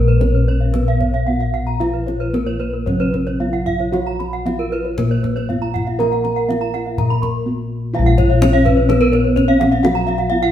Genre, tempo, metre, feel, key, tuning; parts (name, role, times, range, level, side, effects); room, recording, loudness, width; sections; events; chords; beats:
Balinese gamelan; 113-127 BPM; 4/4; straight; Bb pelog; A4 = 440 Hz
gamelan-type bronze metallophone; melody; 0.0-10.5 s; Bb3 to Bb4; -22 LUFS; equal
gamelan-type bronze metallophone; accompaniment; 0.0-10.5 s; C3+50c to Cb4; -27 LUFS; right 3 dB
gamelan-type bronze metallophone; arpeggios; 0.0-10.4 s; Bb4 to C6+50c; -23 LUFS; left 3 dB
gamelan-type bossed gongs; bass; 0.0-10.5 s; Bb1 to Bb4; -18 LUFS; left 1 dB
gamelan-type bronze metallophone; arpeggios; 0.1-10.5 s; Bb4 to Cb6; -25 LUFS; right 4 dB
kendang; percussion; 0.2-10.1 s; -25 LUFS; left 1 dB
wet stone room reverb, RT60 1.4 s; band playing live in one room; -15 LUFS; side -10 dB against mid
0.0-7.9 A section; 7.9-10.5 B section
break 7.2-7.9; drum fill 7.3-7.9
0.21 0.74 1.27 | 1.81 2.34 2.87 3.40 | 3.93 4.46 4.98 5.49 | 5.99 6.49 6.98 7.46 | 7.94 8.41 8.89 9.36 | 9.84 10.31